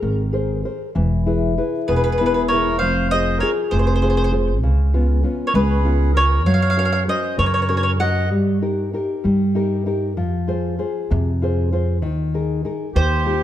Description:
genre	italian folk, Italian serenade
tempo	65 BPM (dotted quarters)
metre	6/8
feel	rubato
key	unclear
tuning	A4 = 440 Hz
part	nylon-string guitar	accompaniment	0.0-13.4 s	B2 to C5	-22 LUFS	left 2 dB	none
part	upright bass	bass	0.0-13.4 s	E1 to G2	-20 LUFS	right 1 dB	none
part	mandolin	melody	1.9-8.3, 13.0-13.4 s	B4 to Gb5	-21 LUFS	equal	analog delay
part	accordion	second line	1.9-8.3, 12.9-13.4 s	G4 to Eb5	-25 LUFS	right 4 dB	none
room	moderate recital hall reverb, RT60 1.2 s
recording	dark, warm production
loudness	-17 LUFS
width	side -12 dB against mid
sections	0.9-13.4 A section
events	none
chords	0.0 Abadd9; 0.9 E; 2.8 Fm; 4.6 Db7; 6.5 Gb; 8.3 Eb/G; 10.2 Fm; 12.0 Ebsus4

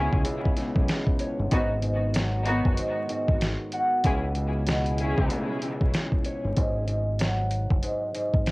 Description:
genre	hip hop, boom-bap hip-hop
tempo	95 BPM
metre	4/4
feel	swing 60% on 16ths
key	unclear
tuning	A4 = 440 Hz
part	concert harp	accompaniment	0.0-8.5 s	C#2 to F#5	-29 LUFS	equal	high-pass filter, low-pass filter
part	dark analog pad	sustained chords	0.0-6.6 s	C#3 to F#4	-36 LUFS	equal	chorus, phaser, high-pass filter, low-pass filter
part	rich studio string section	stabs	0.0-5.4 s	B3 to G#4	-31 LUFS	left 1 dB	high-pass filter, low-pass filter, tape echo
part	deep dub fingered electric bass	bass	0.0-8.5 s	F#1 to C#2	-28 LUFS	equal	none
part	dusty soul sampler-style drum kit	drums	0.1-8.5 s	hi-hat, kick drum, snare drum	-25 LUFS	equal	cassette tape
room	little or no reverb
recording	home recording on cassette, vinyl crackle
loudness	-23 LUFS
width	side -23 dB against mid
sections	0.0-6.6 A section; 6.6-8.5 B section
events	none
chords	0.0 C#m7; 1.5 G#m7; 4.0 C#m7; 6.6 F#sus2

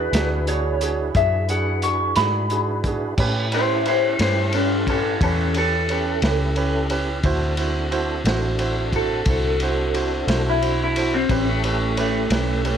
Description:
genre	slow blues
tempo	59 BPM (dotted quarters)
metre	12/8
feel	straight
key	A mixolydian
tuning	A4 = 443 Hz
part	electric guitar through a small old amp	melody	0.0-12.8 s	A3 to C#6	-22 LUFS	left 2 dB	phaser, slapback echo
part	bright upright piano	accompaniment	0.0-12.8 s	C#4 to C5	-26 LUFS	right 5 dB	none
part	tonewheel organ	sustained chords	0.0-12.8 s	C4 to B4	-30 LUFS	equal	overdrive, chorus vibrato, slow rotary speaker
part	vintage muted fingered electric bass	bass	0.0-12.8 s	A1 to A2	-24 LUFS	equal	none
part	vintage drum kit	drums	0.1-12.8 s	crash cymbal, hi-hat, kick drum, ride cymbal, snare drum	-26 LUFS	equal	none
room	light reverb, small room reverb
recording	none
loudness	-18 LUFS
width	side -8 dB against mid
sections	0.0-3.2 A section; 3.2-12.8 B section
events	clean electric guitar solo 3.2-12.8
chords	0.0 E7; 3.2 A7; 7.2 D7; 11.3 A7

